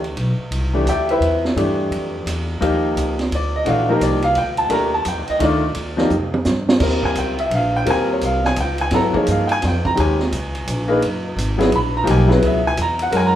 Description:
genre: modal jazz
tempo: 171 BPM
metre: 3/4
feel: swing 64% on 8ths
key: Eb mixolydian from 6.8 s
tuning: A4 = 439 Hz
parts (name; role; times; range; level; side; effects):
- upright bass; bass; 0.0-13.4 s; Gb1 to Ab2; -22 LUFS; equal; none
- vintage drum kit; drums; 0.0-13.2 s; crash cymbal, hi-hat, kick drum, ride cymbal, snare drum, toms; -24 LUFS; right 2 dB; none
- bright upright piano; accompaniment; 0.7-13.4 s; Eb3 to Cb6; -18 LUFS; left 1 dB; none
room: wet large studio reverb, RT60 1.2 s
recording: band playing live in one room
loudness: -16 LUFS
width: side -11 dB against mid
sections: 0.0-6.8 A section; 6.8-13.4 A section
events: drum fill 6.1-6.8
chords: 0.0 Cmaj9; 2.6 Ebmaj9; 6.8 Eb9sus4; 11.0 Gb9sus4

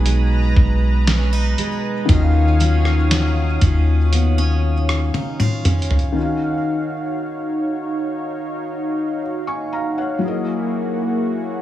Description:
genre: contemporary R&B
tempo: 59 BPM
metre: 4/4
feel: straight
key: Eb minor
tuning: A4 = 438 Hz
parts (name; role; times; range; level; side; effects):
- felt-muted upright piano; accompaniment; 0.0-11.6 s; B2 to Db6; -26 LUFS; left 4 dB; none
- lush unison pad; sustained chords; 0.0-11.6 s; Bb3 to Eb6; -24 LUFS; right 1 dB; chorus, sidechain pumping
- picked steel-string acoustic guitar; arpeggios; 0.0-6.8 s; B2 to F4; -24 LUFS; right 4 dB; digital delay
- soft 808-style bass; bass; 0.0-5.1 s; B1 to Eb2; -16 LUFS; left 1 dB; none
- dusty soul sampler-style drum kit; drums; 0.1-6.1 s; hi-hat, kick drum, rim click, snare drum, toms; -19 LUFS; equal; none
room: light reverb, digital ambience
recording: small room ambience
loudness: -16 LUFS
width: side -13 dB against mid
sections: 0.0-6.2 A section; 6.2-11.6 B section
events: drum fill 5.1-6.2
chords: 0.0 B6; 2.1 Ebm9; 10.2 Gb13

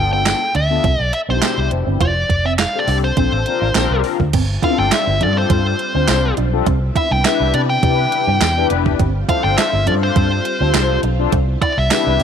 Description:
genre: early-eighties boogie funk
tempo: 103 BPM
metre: 4/4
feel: straight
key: unclear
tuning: A4 = 438 Hz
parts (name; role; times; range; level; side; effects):
- nasal lead guitar with a parked wah; melody; 0.0-12.2 s; C5 to G5; -20 LUFS; equal; overdrive
- mellow synth brass; accompaniment; 0.0-12.2 s; B2 to C5; -21 LUFS; left 13 dB; chorus
- vintage muted fingered electric bass; bass; 0.0-12.2 s; F1 to C3; -18 LUFS; equal; none
- electric guitar with an envelope filter; riff; 0.1-12.2 s; A3 to F4; -27 LUFS; right 14 dB; ensemble chorus
- crisp 8-bit digital drum machine; drums; 0.3-12.2 s; crash cymbal, handclaps, hi-hat, kick drum, snare drum; -20 LUFS; right 4 dB; overdrive
- tambourine; percussion; 0.3-12.1 s; none; -29 LUFS; left 14 dB; none
- phased string machine; sustained chords; 4.3-12.2 s; C3 to F4; -26 LUFS; equal; ensemble chorus, phaser
room: moderate spring reverb, RT60 1.6 s, digital ambience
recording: 1960s-style stereo with parts hard left and right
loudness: -14 LUFS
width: side -8 dB against mid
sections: 0.0-4.3 A section; 4.3-12.2 B section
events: none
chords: 0.0 G9; 0.8 Cmaj7; 2.0 F6; 3.2 Bbmaj9; 4.3 G9sus4; 6.7 Cmaj9; 9.0 G9sus4; 11.3 Cmaj9

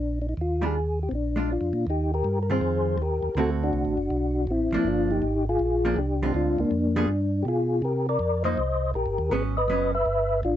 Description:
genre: soul jazz organ trio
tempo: 161 BPM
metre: 4/4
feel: swing 65% on 8ths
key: Eb major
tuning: A4 = 440 Hz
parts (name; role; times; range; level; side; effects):
- percussive tonewheel organ; melody; 0.0-10.6 s; Bb3 to Fb5; -25 LUFS; left 2 dB; slow rotary speaker, chorus vibrato
- mellow tonewheel organ; bass; 0.0-10.6 s; F#1 to C3; -28 LUFS; right 1 dB; slow rotary speaker
- hollow-body jazz guitar; accompaniment; 0.6-9.9 s; D3 to Ab4; -28 LUFS; right 3 dB; none
room: light reverb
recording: nothing above 8.0 kHz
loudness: -23 LUFS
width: side -11 dB against mid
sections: 0.0-1.9 A section; 1.9-10.6 B section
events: none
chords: 0.0 Ebmaj7sus2; 1.1 Bb7; 1.9 Eb69; 3.4 D7; 4.9 Gm7; 6.3 Dm7b5; 7.1 G7b9; 7.8 Cm11; 9.3 Abm7; 10.1 G13

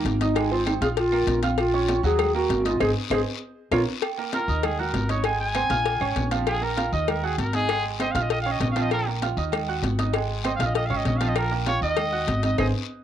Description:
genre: latin, salsa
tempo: 196 BPM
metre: 4/4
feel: straight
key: Bb minor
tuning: A4 = 440 Hz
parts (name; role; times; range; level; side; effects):
- mellow hollow tenor recorder; melody; 0.0-3.8 s; Eb4 to Ab4; -24 LUFS; equal; cassette tape
- clear grand piano; accompaniment; 0.0-12.7 s; F3 to Gb6; -29 LUFS; right 8 dB; cassette tape
- upright bass; bass; 0.0-12.7 s; Ab1 to Eb2; -27 LUFS; left 1 dB; none
- congas; percussion; 0.1-12.7 s; none; -31 LUFS; left 1 dB; none
- cowbell; percussion; 0.1-12.7 s; none; -30 LUFS; left 13 dB; none
- guiro; percussion; 0.1-12.7 s; none; -38 LUFS; left 12 dB; none
- agogo bells and timbales; percussion; 0.4-12.7 s; none; -34 LUFS; right 13 dB; none
- claves; percussion; 0.4-12.7 s; none; -36 LUFS; right 10 dB; none
- clear trumpet; melody; 4.3-12.7 s; Ab4 to Ab5; -27 LUFS; left 1 dB; cassette tape
room: light reverb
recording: home recording on cassette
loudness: -22 LUFS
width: side -10 dB against mid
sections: 0.0-4.0 A section; 4.0-13.0 B section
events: band accent 2.8-4.0, 12.6-13.0; drum fill 3.4-4.0; trumpet solo 4.0-13.0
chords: 0.4 Ab; 1.0 Bbm; 2.2 Ebm; 2.8 Ab; 3.4 Bbm; 4.0 Bb5; 4.6 Ebm; 5.2 Ab; 5.9 Bbm; 7.1 Ebm; 7.7 Ab; 8.3 Bbm; 9.5 Ebm; 10.1 Ab; 10.8 Bbm; 12.0 Ebm

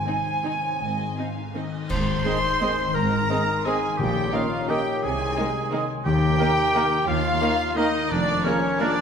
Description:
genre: classical, orchestral ballroom waltz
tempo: 157-189 BPM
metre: 3/4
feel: rubato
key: Ab major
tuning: A4 = 440 Hz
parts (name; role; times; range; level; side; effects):
- rich chamber violin section; second line; 0.0-8.9 s; Bb3 to Ab5; -36 LUFS; left 1 dB; none
- silver concert flute; second line; 0.0-9.0 s; Db5 to C6; -28 LUFS; right 1 dB; none
- mellow French horn section; sustained chords; 0.0-8.9 s; Bb3 to Ab4; -40 LUFS; left 4 dB; none
- concert harp; arpeggios; 0.0-9.0 s; F2 to C6; -30 LUFS; left 7 dB; none
- rich chamber violin section; melody; 0.1-9.0 s; C5 to C6; -30 LUFS; left 2 dB; none
- rich studio viola section; accompaniment; 0.1-8.9 s; Eb3 to Eb4; -32 LUFS; right 2 dB; none
- warm chamber cello section; bass; 0.8-8.4 s; Eb2 to C3; -32 LUFS; right 2 dB; none
- warm chamber double bass section; bass; 0.8-8.4 s; F1 to Eb2; -32 LUFS; right 4 dB; none
- warm clarinet; second line; 1.9-9.0 s; Db4 to C5; -29 LUFS; left 1 dB; none
- warm oboe; second line; 1.9-9.0 s; Db4 to C5; -30 LUFS; right 2 dB; none
- clash cymbals and concert bass drum; percussion; 1.9-2.6 s; none; -34 LUFS; right 1 dB; none
- warm trombone section; sustained chords; 2.3-8.9 s; Eb3 to Bb3; -35 LUFS; right 2 dB; none
- mellow trumpet; stabs; 2.3-8.9 s; Bb4 to Eb5; -33 LUFS; right 3 dB; none
- timpani; percussion; 4.0-6.5 s; Bb2 to Eb3; -28 LUFS; left 2 dB; none
room: wet scoring stage reverb, RT60 1.6 s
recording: minimal, uncompressed stereo recording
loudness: -21 LUFS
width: side -7 dB against mid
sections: 0.0-1.9 A section; 1.9-9.0 B section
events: band accent 1.9-2.3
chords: 0.0 Ab; 4.0 Eb7/Bb; 5.0 Ab/C; 6.1 Eb; 8.1 Bb7/F

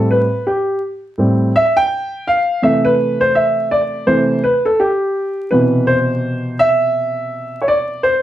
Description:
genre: hip hop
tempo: 83 BPM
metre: 4/4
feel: swing 60% on 16ths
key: C major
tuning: A4 = 440 Hz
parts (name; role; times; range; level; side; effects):
- dark grand piano; solo; 0.0-8.2 s; A2 to G5; -13 LUFS; equal; slapback echo
room: moderate small room reverb, RT60 0.5 s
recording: dark, warm production, vinyl crackle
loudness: -13 LUFS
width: side -12 dB against mid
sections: 0.0-5.5 A section; 5.5-8.2 B section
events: grand piano solo 0.0-5.5, 5.5-8.2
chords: 0.0 Am7; 2.6 C6; 5.5 Cmaj7

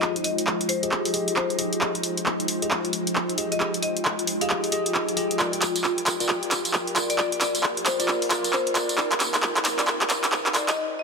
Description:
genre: UK garage, two-step garage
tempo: 134 BPM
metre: 4/4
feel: swing 63% on 16ths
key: F dorian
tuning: A4 = 444 Hz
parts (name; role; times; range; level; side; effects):
- marimba with medium hard mallets; melody; 0.0-11.0 s; C5 to F5; -30 LUFS; left 5 dB; ping-pong delay
- soft string machine; sustained chords; 0.0-10.7 s; C3 to G5; -33 LUFS; equal; ensemble chorus
- bell-like tine electric piano; stabs; 0.0-10.7 s; Eb4 to Eb5; -30 LUFS; left 1 dB; analog chorus, low-pass filter, ping-pong delay
- punchy analog drum machine; drums; 0.0-10.8 s; handclaps, hi-hat, tambourine; -24 LUFS; right 1 dB; soft clipping on snare
- granular cloud pad; texture; 0.0-10.8 s; Eb4 to G5; -30 LUFS; equal; built-in reverb
room: moderate lush hall reverb, RT60 2.0 s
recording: dense, heavily limited modern master, high-pass filter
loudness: -22 LUFS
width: side -4 dB against mid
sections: 0.0-11.0 A section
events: build-up 0.0-11.0; drum fill 0.0-10.8; filter sweep on tine electric piano 0.0-11.0; break 10.8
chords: 0.0 Fm7; 5.4 Gm7; 9.0 Cm7

